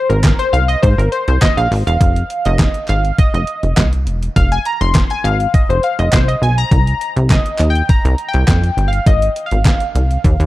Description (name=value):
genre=early-eighties boogie funk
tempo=102 BPM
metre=4/4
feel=straight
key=F minor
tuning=A4 = 441 Hz
part: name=funky polysynth comp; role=accompaniment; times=0.0-10.5 s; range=Bb4 to C6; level=-18 LUFS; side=left 1 dB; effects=chorus
part: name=plucky analog bass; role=bass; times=0.1-10.5 s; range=E1 to Ab2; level=-15 LUFS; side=equal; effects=none
part: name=detuned 8-bit digital drum machine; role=drums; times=0.1-10.5 s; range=handclaps, hi-hat, kick drum, snare drum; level=-14 LUFS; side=equal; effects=overdrive
part: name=group handclap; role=percussion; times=0.2-9.8 s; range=none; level=-28 LUFS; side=right 1 dB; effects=none
room=little or no reverb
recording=dark, warm production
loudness=-12 LUFS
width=side -17 dB against mid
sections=0.0-10.5 A section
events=analog polysynth solo 0.0-10.5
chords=0.0 Ab; 2.0 Fm7; 6.7 Cm; 9.1 Ab6